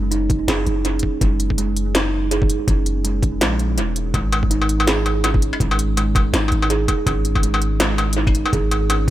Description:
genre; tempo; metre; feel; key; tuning
half-time drum and bass; 164 BPM; 4/4; swing 58% on 16ths, half-time; unclear; A4 = 440 Hz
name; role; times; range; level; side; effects
long sustained 808-style bass; bass; 0.0-9.1 s; E1 to A#1; -21 LUFS; equal; none
kalimba; arpeggios; 0.1-9.1 s; G#3 to G#4; -23 LUFS; right 4 dB; tape echo
industrial drum kit; drums; 0.1-9.1 s; hi-hat, snare drum, struck metal; -22 LUFS; left 1 dB; analog delay
electronic kick drum; drums; 0.3-9.1 s; none; -20 LUFS; equal; overdrive
room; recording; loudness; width
little or no reverb; echo-heavy mix; -16 LUFS; side -14 dB against mid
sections
0.0-9.1 A section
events
break 3.8-4.1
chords
0.0 F#5; 4.1 G#5

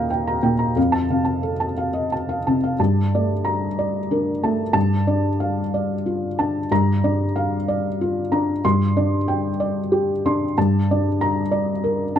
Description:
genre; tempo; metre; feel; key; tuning
neoclassical minimalist piano; 93 BPM; 3/4; rubato; G minor; A4 = 443 Hz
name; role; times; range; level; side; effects
felt-muted upright piano; solo; 0.0-12.2 s; Eb2 to C6; -18 LUFS; equal; none
room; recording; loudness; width
small room ambience; dry, close 1970s-style studio recording; -18 LUFS; side -9 dB against mid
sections
0.0-2.8 A section; 2.8-12.2 B section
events
none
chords
0.0 Ebadd9; 0.8 F; 2.8 Gmadd9; 4.8 Dm/G; 6.7 Bb/G; 8.6 Csus2/G; 10.6 Gmadd9

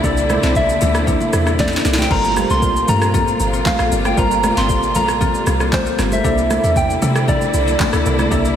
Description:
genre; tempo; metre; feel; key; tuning
amapiano; 116 BPM; 4/4; straight; G dorian; A4 = 440 Hz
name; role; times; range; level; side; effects
soft struck synth lead; melody; 0.0-8.6 s; C5 to C6; -19 LUFS; equal; chorus, tape echo
warm analog keys; accompaniment; 0.0-8.6 s; C3 to E5; -24 LUFS; right 3 dB; chorus
warm studio string section; sustained chords; 0.0-8.6 s; Bb2 to F4; -25 LUFS; equal; sidechain pumping
marimba with medium hard mallets; stabs; 0.0-8.6 s; A3 to A4; -23 LUFS; left 6 dB; tape echo
deep log drum bass; bass; 0.0-8.6 s; G1 to C3; -20 LUFS; equal; none
smooth R&B drum kit; drums; 0.0-8.6 s; crash cymbal, handclaps, kick drum, rim click, shaker, snare drum; -20 LUFS; equal; overdrive
congas; percussion; 0.3-8.3 s; none; -26 LUFS; right 3 dB; none
room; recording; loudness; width
wet lush hall reverb, RT60 2.5 s; dreamy mix soaked in reverb; -14 LUFS; side -9 dB against mid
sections
0.0-8.6 A section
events
drum fill 1.6-2.1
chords
0.0 C13; 2.1 Gm11; 6.2 C13

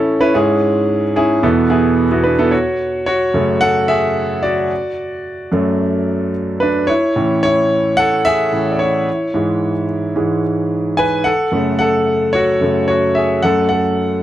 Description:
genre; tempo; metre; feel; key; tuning
pop; 110 BPM; 4/4; straight; unclear; A4 = 440 Hz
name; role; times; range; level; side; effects
clear concert grand piano; solo; 0.0-14.2 s; E2 to G#5; -13 LUFS; equal; none
room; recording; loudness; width
light reverb, small room ambience; dry, close 1970s-style studio recording; -13 LUFS; side -12 dB against mid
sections
0.0-2.5 A section; 2.5-14.2 B section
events
grand piano solo 2.5-14.2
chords
0.3 C#m/G#; 1.4 Esus4; 2.5 F#m; 4.7 D/F#; 6.9 A; 9.1 C#m/G#; 11.3 F#m; 13.4 D/F# (rootless)

